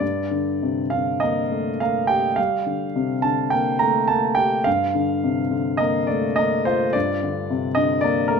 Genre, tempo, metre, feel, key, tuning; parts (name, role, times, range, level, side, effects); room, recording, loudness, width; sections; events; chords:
classical, romantic nocturne for solo piano; 48-56 BPM; 4/4; rubato; G minor; A4 = 438 Hz
warm concert grand piano; solo; 0.0-8.4 s; G2 to Bb5; -19 LUFS; equal
moderate recital hall reverb, RT60 1.5 s; close, detailed microphones; -19 LUFS; side -6 dB against mid
0.0-8.4 A section
0.0 Gm